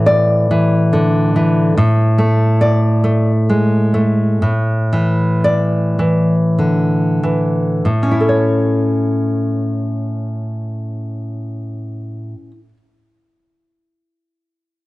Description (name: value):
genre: romantic piece for solo classical guitar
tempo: 43-72 BPM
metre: 3/4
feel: rubato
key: A major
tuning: A4 = 442 Hz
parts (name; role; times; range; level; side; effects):
- nylon-string guitar; solo; 0.0-12.8 s; A2 to D5; -13 LUFS; equal; none
room: moderate recital hall reverb, RT60 1.2 s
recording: worn, warbling old tape, cassette tape, warbly pitch drift, nothing above 10.9 kHz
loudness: -13 LUFS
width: side -19 dB against mid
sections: 0.0-7.8 A section; 7.8-11.2 B section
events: slowing down 0.5-7.8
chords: 0.0 Asus4; 1.8 D5/A; 4.4 Asus4; 7.8 A